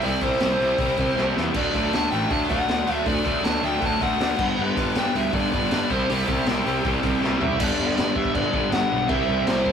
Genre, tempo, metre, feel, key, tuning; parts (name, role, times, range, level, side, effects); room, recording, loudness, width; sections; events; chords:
punk rock; 158 BPM; 4/4; straight; G major; A4 = 442 Hz
dark smooth lead guitar; melody; 0.0-9.7 s; G4 to A5; -26 LUFS; equal; overdrive
crunchy overdriven guitar; riff; 0.0-9.7 s; G2 to D4; -29 LUFS; right 6 dB
distorted electric guitar; riff; 0.0-9.7 s; G2 to E4; -25 LUFS; left 4 dB; distortion
distorted electric guitar; riff; 0.0-9.7 s; G2 to E4; -34 LUFS; right 3 dB
fuzz picked electric bass; bass; 0.0-9.7 s; G1 to G2; -28 LUFS; right 1 dB; overdrive
raw garage drum kit; drums; 0.0-9.7 s; crash cymbal, hi-hat, kick drum, snare drum, toms; -28 LUFS; equal
moderate studio reverb, RT60 0.6 s; rough rehearsal-room recording, warm saturation; -20 LUFS; side -7 dB against mid
0.0-7.6 A section; 7.6-9.7 B section
drum fill 1.2-1.5, 7.2-7.6
0.0 C; 1.5 D; 4.4 G; 5.9 C; 7.6 G; 9.1 C